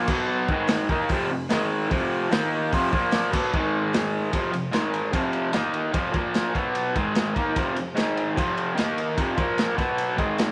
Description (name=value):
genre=garage rock duo or trio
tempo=148 BPM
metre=4/4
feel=straight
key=unclear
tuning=A4 = 443 Hz
part: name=raw garage guitar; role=riff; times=0.0-10.5 s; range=F2 to Eb4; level=-26 LUFS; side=equal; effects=overdrive
part: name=crunchy breakbeat drum kit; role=drums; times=0.1-10.5 s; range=crash cymbal, hi-hat, kick drum, ride cymbal, snare drum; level=-30 LUFS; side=equal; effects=none
room=moderate plate reverb, RT60 2.2 s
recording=none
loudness=-24 LUFS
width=mono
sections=0.0-4.3 A section; 4.3-10.5 B section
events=none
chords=0.1 B5; 0.5 Ab5; 0.9 F5; 1.5 Ab5; 1.9 F5; 2.3 Eb5; 2.7 F5; 2.9 Bb5; 3.3 B5; 3.5 Ab5; 4.3 F5; 4.7 Ab5; 5.1 F5; 5.5 Eb5; 6.0 F5; 6.2 Bb5; 6.6 B5; 7.0 Ab5; 7.4 F5; 8.0 Ab5; 8.4 F5; 8.8 Eb5; 9.2 F5; 9.4 Bb5; 9.8 B5